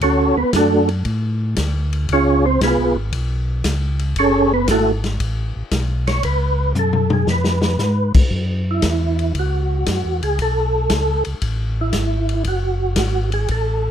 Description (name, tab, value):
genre	soul jazz organ trio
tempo	116 BPM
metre	4/4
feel	swing 69% on 8ths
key	F# minor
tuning	A4 = 440 Hz
part	percussive tonewheel organ	melody	0.0-13.9 s	A3 to C#5	-18 LUFS	right 2 dB	chorus vibrato, fast rotary speaker
part	mellow tonewheel organ	bass	0.0-13.9 s	F#1 to A2	-20 LUFS	equal	overdrive, chorus vibrato, slow rotary speaker
part	vintage drum kit	drums	0.0-13.7 s	crash cymbal, hi-hat, kick drum, ride cymbal, snare drum, toms	-21 LUFS	left 2 dB	none
room	light reverb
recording	close, detailed microphones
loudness	-16 LUFS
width	side -9 dB against mid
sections	0.0-8.3 A section; 8.3-13.9 A section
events	tonewheel organ solo 0.0-8.3, 8.3-13.9; drum fill 6.8-7.8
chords	0.0 Dmaj7; 2.1 C#7; 4.2 F#madd9; 6.2 C#7; 8.3 F#5; 10.4 Bsus2; 12.5 F#madd9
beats	| 0.01 0.53 1.05 1.57 | 2.09 2.60 3.12 3.64 | 4.16 4.68 5.20 5.72 | 6.24 6.75 7.27 7.79 | 8.31 8.83 9.35 9.87 | 10.38 10.90 11.42 11.94 | 12.46 12.98 13.49